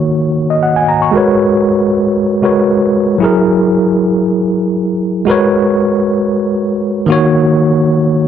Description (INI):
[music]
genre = amapiano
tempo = 116 BPM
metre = 4/4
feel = straight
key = G# minor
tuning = A4 = 438 Hz
[part]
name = bell-like tine electric piano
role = solo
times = 0.0-8.3 s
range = D#3 to C#6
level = -10 LUFS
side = equal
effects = fast stereo tremolo, low-pass filter
[sound]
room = light reverb, digital ambience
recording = dry, gritty hardware recording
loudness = -10 LUFS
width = side -9 dB against mid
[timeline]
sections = 0.0-8.3 A section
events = filter sweep on tine electric piano 0.0-8.3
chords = 0.0 D#m7; 1.1 G#m11; 3.2 F#9; 5.3 G#m11; 7.1 D#m7